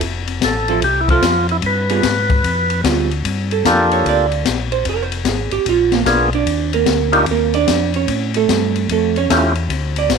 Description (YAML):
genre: soul jazz organ trio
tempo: 149 BPM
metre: 4/4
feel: swing 65% on 8ths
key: G minor from 3.2 s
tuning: A4 = 439 Hz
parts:
  - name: mellow tonewheel organ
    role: bass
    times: 0.0-10.2 s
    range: F1 to A2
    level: -21 LUFS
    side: left 1 dB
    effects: overdrive, chorus vibrato, slow rotary speaker
  - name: open jazz drum kit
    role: drums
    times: 0.0-10.2 s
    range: hi-hat, kick drum, ride cymbal, snare drum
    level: -20 LUFS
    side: left 7 dB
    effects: none
  - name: percussive tonewheel organ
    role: melody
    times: 0.4-9.5 s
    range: A3 to B4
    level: -16 LUFS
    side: left 1 dB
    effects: slow rotary speaker
  - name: vintage hollow-body jazz guitar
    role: accompaniment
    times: 0.7-10.2 s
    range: F3 to D5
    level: -18 LUFS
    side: right 12 dB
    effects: none
room: light reverb, small room ambience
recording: 1960s-style stereo with parts hard left and right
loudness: -14 LUFS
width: side -5 dB against mid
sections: 0.0-3.2 A section; 3.2-10.2 B section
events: hollow-body jazz guitar solo 3.2-10.2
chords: 0.0 Fmaj7; 1.6 G7b9; 3.2 Gm9; 4.9 Fm; 5.7 Bb7b9; 6.5 Ebmaj7sus2; 8.1 A7b13